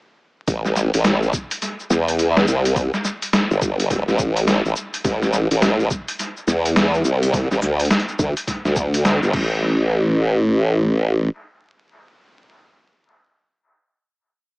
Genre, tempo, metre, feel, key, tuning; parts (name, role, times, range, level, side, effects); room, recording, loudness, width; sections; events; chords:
glitch hop; 105 BPM; 4/4; swing 62% on 16ths; A minor pentatonic; A4 = 440 Hz
formant-sweep wobble bass; bass; 0.5-11.3 s; G1 to E2; -17 LUFS; equal; chorus
boom bap sampler-style drum kit; drums; 0.5-9.5 s; crash cymbal, hi-hat, shaker, snare drum; -21 LUFS; equal; overdrive, dub echo
electronic kick drum; drums; 0.5-9.5 s; -26 LUFS; equal; overdrive
moderate spring reverb, RT60 2.0 s; echo-heavy mix, vinyl crackle, small speaker sound; -17 LUFS; side -28 dB against mid
0.5-9.6 drop; 9.6-11.9 final hit
drop 0.5-9.6; band accent 9.0